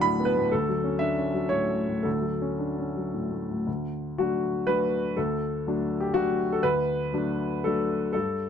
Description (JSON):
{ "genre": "neoclassical minimalist piano", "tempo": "110-125 BPM", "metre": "3/4", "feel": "rubato", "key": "D major", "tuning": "A4 = 440 Hz", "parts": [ { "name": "warm upright piano", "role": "solo", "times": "0.0-8.5 s", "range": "D2 to B5", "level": "-24 LUFS", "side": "left 1 dB", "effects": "none" } ], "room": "light reverb", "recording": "none", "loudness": "-24 LUFS", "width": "side -8 dB against mid", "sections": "0.0-3.7 A section; 3.7-8.5 B section", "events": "none", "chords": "0.0 D6; 0.5 A6/D; 3.7 D" }